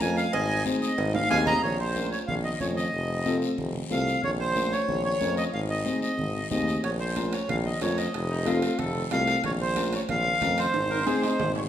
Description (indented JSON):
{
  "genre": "latin, cumbia",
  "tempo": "184 BPM",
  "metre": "4/4",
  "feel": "straight",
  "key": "Bb minor",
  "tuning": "A4 = 442 Hz",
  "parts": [
    { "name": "accordion", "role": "melody", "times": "0.0-11.6 s", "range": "C5 to Bb5", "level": "-28 LUFS", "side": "right 1 dB", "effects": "none" },
    { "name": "dark upright piano", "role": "accompaniment", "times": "0.0-11.3 s", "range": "C4 to Db5", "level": "-32 LUFS", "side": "left 2 dB", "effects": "none" },
    { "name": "clear tuba", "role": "bass", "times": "0.0-11.7 s", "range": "F1 to F2", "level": "-30 LUFS", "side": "equal", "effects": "none" },
    { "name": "congas", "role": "percussion", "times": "0.0-11.6 s", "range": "none", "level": "-34 LUFS", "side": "equal", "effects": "none" },
    { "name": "guiro", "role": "percussion", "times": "0.0-11.7 s", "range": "none", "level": "-40 LUFS", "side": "left 6 dB", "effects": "none" },
    { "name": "cowbell and timbales", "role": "percussion", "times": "0.3-1.5, 6.8-11.6 s", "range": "none", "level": "-36 LUFS", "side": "right 5 dB", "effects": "none" },
    { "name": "raspy tenor saxophone", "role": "second line", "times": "8.3-11.5 s", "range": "Eb4 to Bb4", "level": "-32 LUFS", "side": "left 2 dB", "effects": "none" }
  ],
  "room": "wet recital hall reverb, RT60 1.5 s",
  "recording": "recorded in a church or concert hall",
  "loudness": "-24 LUFS",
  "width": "side -10 dB against mid",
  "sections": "0.0-1.6 A section; 1.6-11.7 B section",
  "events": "accordion solo 0.0-1.6; drum fill 1.1-1.6, 10.7-11.7",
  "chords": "0.3 Ab; 1.6 Bbm; 2.9 F7; 4.2 Bbm; 5.5 Ab; 6.8 Bbm; 8.1 F7; 9.4 Bbm; 10.7 Ab"
}